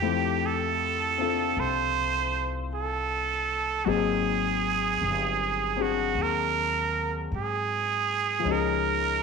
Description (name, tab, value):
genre	jazz ballad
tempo	52 BPM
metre	4/4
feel	swing 66% on 8ths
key	unclear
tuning	A4 = 437 Hz
part	trumpet with straight mute	melody	0.0-9.2 s	Gb4 to C5	-26 LUFS	right 7 dB	slapback echo
part	warm concert grand piano	accompaniment	0.0-9.2 s	F3 to A4	-30 LUFS	left 12 dB	none
part	upright bass	bass	0.0-9.2 s	G1 to Ab2	-34 LUFS	left 1 dB	none
room	wet spring reverb, RT60 1.2 s, small room ambience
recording	1960s-style stereo with parts hard left and right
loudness	-24 LUFS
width	side -5 dB against mid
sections	0.0-9.2 A section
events	none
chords	0.0 Fmaj9; 3.9 Ab7; 8.5 Db